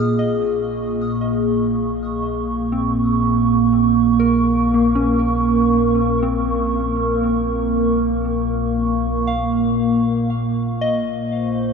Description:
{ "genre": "ambient", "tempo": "free time", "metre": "none", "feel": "none", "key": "Bb minor", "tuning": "A4 = 440 Hz", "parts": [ { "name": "warbly tape-like pad", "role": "sustained chords", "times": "0.0-11.7 s", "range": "Bb2 to Db6", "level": "-17 LUFS", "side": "right 1 dB", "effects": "chorus, built-in reverb" }, { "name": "soft synth bell", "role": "arpeggios", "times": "0.0-11.7 s", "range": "Bb3 to F6", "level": "-26 LUFS", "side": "left 4 dB", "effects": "chorus, tape echo" }, { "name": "deep rumbling drone", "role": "bass", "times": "0.6-11.7 s", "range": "Bb1", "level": "-28 LUFS", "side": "left 1 dB", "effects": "built-in reverb, phaser" } ], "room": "wet huge ambient reverb, RT60 7.7 s", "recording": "dark, warm production", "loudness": "-16 LUFS", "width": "side -5 dB against mid", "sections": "0.0-11.7 A section", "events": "fade-in on synth bell 0.0-11.7; fade-in on synth drone 0.0-11.7", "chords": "0.0 Bbm7; 10.6 Abadd9/Bb (rootless)" }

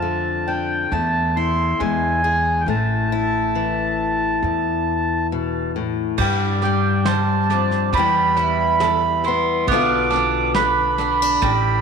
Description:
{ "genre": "acoustic folk duo or small band", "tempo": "68 BPM", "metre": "4/4", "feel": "straight", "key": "A minor", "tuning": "A4 = 440 Hz", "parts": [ { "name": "mellow accordion", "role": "melody", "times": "0.0-11.8 s", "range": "G5 to D6", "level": "-21 LUFS", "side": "right 4 dB", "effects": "tape echo" }, { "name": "fingerpicked steel-string acoustic guitar", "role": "accompaniment", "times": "0.0-11.8 s", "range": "E2 to G#4", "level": "-23 LUFS", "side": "left 10 dB", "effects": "none" }, { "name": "upright bass", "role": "bass", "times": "0.0-11.8 s", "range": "A1 to G2", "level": "-24 LUFS", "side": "right 1 dB", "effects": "none" }, { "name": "mandolin", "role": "arpeggios", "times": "6.2-11.8 s", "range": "G3 to C5", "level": "-23 LUFS", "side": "right 10 dB", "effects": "none" }, { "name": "soft brush drum kit", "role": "drums", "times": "6.2-11.6 s", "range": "crash cymbal, kick drum, snare drum", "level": "-28 LUFS", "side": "equal", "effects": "none" } ], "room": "moderate echo chamber reverb, RT60 2.4 s", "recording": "1960s-style stereo with parts hard left and right", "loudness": "-17 LUFS", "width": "side -6 dB against mid", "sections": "0.0-6.2 A section; 6.2-11.8 B section", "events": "none", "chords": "0.0 Dm/F; 0.9 Am/E; 1.8 E; 2.7 A5; 6.2 Gsus4; 7.9 Em; 9.7 Bdim" }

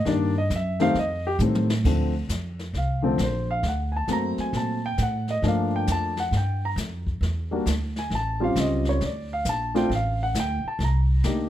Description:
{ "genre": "jazz, small-group swing and bop", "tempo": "134 BPM", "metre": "4/4", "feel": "swing 66% on 8ths", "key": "Bb major", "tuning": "A4 = 440 Hz", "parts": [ { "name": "warm concert grand piano", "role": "accompaniment", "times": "0.0-11.5 s", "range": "D3 to Bb5", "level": "-25 LUFS", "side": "left 1 dB", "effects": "none" }, { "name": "upright bass", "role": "bass", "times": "0.0-11.5 s", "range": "A1 to Bb2", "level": "-25 LUFS", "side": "equal", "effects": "none" }, { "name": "jazz brush drum kit", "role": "drums", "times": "0.1-11.5 s", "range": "brushed snare drum, crash cymbal, hi-hat, kick drum, snare drum, toms", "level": "-32 LUFS", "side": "left 2 dB", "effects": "none" } ], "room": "light reverb", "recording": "close, detailed microphones", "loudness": "-22 LUFS", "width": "side -12 dB against mid", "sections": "0.0-1.8 A section; 1.8-11.5 A section", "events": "drum fill 1.4-1.8", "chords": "0.1 Cm7; 1.0 F9; 1.8 Bbmaj9; 3.6 D7b13; 5.4 Gm9; 7.2 Em7b5; 8.1 A7alt; 9.0 Dm; 10.8 Cm9" }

